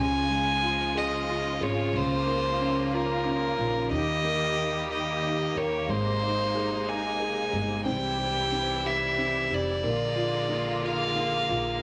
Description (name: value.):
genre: pop.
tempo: 61 BPM (dotted quarters).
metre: 6/8.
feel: straight.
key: unclear.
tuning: A4 = 440 Hz.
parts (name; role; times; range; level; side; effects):
rich violin; melody; 0.0-11.8 s; Bb4 to Ab5; -30 LUFS; equal; none.
dark upright piano; accompaniment; 0.0-11.8 s; Db3 to Bb4; -33 LUFS; equal; none.
clear studio string section; sustained chords; 0.0-11.8 s; C3 to G4; -35 LUFS; equal; none.
upright bass; bass; 0.0-11.8 s; F1 to Eb2; -37 LUFS; equal; none.
room: wet studio reverb, RT60 0.5 s.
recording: none.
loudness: -27 LUFS.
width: mono.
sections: 0.0-11.8 A section.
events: none.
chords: 0.0 Db; 1.9 Bbm/Db; 3.9 Eb; 5.9 Abadd9; 7.9 C; 9.8 Bb7.